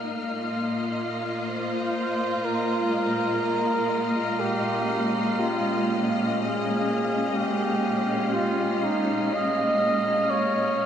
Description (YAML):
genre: ambient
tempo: 61 BPM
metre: 4/4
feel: straight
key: unclear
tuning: A4 = 436 Hz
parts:
  - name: warm studio string section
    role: sustained chords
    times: 0.0-10.9 s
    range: Bb2 to Eb5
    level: -26 LUFS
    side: equal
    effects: none
  - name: wind-like tuned noise texture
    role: texture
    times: 0.0-10.9 s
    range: F5 to F6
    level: -32 LUFS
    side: left 2 dB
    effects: built-in reverb
  - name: warm flugelhorn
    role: melody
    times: 1.5-10.9 s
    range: Eb4 to Eb5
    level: -26 LUFS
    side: equal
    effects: diffuse ambient delay
room: wet huge ambient reverb, RT60 7.9 s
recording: in a vast, echoing space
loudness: -23 LUFS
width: side -9 dB against mid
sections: 0.0-2.5 A section; 2.5-10.9 B section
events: none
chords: 0.0 Bbsus2; 2.5 Bbm7